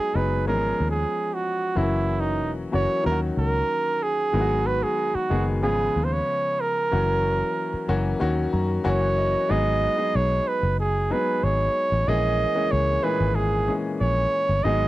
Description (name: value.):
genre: lush 1970s-style soul.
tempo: 93 BPM.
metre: 4/4.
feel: straight.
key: G# minor.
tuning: A4 = 440 Hz.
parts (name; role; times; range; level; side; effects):
clear flugelhorn; melody; 0.0-14.9 s; D#4 to D#5; -24 LUFS; right 2 dB; none.
warm grand piano; accompaniment; 0.0-14.9 s; A#2 to A#5; -27 LUFS; left 3 dB; none.
vintage muted fingered electric bass; bass; 0.0-14.9 s; E1 to F#2; -25 LUFS; equal; none.
room: little or no reverb.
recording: dry, close 1970s-style studio recording.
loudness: -21 LUFS.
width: side -16 dB against mid.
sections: 0.0-9.5 A section; 9.5-14.9 B section.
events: flugelhorn solo 0.0-9.5; grand piano fill 8.2-9.5.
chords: 0.5 C#7/G#; 1.8 F#7; 3.0 D#m7; 4.3 G#m7; 5.6 C#7/G#; 6.9 F#7; 8.2 D#m7; 8.9 F#7; 9.5 G#m7; 12.1 A#m7b5.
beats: 0.47 1.11 | 1.76 2.40 3.05 3.69 | 4.34 4.98 5.63 6.27 | 6.92 7.56 8.21 8.85 | 9.50 10.14 10.79 11.43 | 12.07 12.72 13.36 14.00 | 14.65.